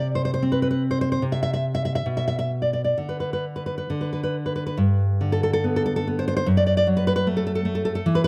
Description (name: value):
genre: romantic piece for solo classical guitar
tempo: 64-80 BPM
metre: 2/4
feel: rubato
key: G major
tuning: A4 = 444 Hz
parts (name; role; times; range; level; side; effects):
- nylon-string guitar; solo; 0.0-8.3 s; F#2 to E5; -23 LUFS; equal; none
room: light reverb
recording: close, detailed microphones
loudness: -23 LUFS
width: mono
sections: 0.0-4.8 A section; 4.8-8.3 B section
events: none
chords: 0.0 N.C.; 4.8 G; 6.5 F#madd11